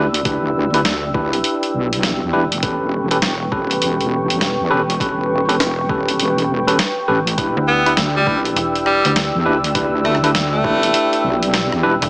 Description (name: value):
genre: glitch hop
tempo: 101 BPM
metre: 4/4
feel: swing 63% on 16ths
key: E dorian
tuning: A4 = 440 Hz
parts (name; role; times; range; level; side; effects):
- dark analog pad; sustained chords; 0.0-12.1 s; B4 to E6; -23 LUFS; equal; chorus, vintage 12-bit sampler grit, sidechain pumping
- tine electric piano; stabs; 0.0-11.9 s; C#4 to B4; -20 LUFS; equal; overdrive, fast stereo tremolo, vintage 12-bit sampler grit, sidechain pumping, dub echo
- wobble bass; bass; 0.0-12.0 s; E1 to E2; -22 LUFS; equal; chorus, overdrive
- boom bap sampler-style drum kit; drums; 0.1-12.1 s; hi-hat, rim click, snare drum; -20 LUFS; equal; none
- electronic kick drum; drums; 0.3-10.8 s; none; -25 LUFS; equal; none
- slap-like FM bass; bass; 7.6-12.1 s; E1 to D2; -22 LUFS; equal; none
- edgy tenor saxophone; melody; 7.7-11.3 s; G3 to B3; -19 LUFS; equal; dub echo
room: light reverb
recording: small speaker sound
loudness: -15 LUFS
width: side -28 dB against mid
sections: 0.0-12.1 A section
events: none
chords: 0.0 Em7; 2.6 A9/E; 7.4 Em7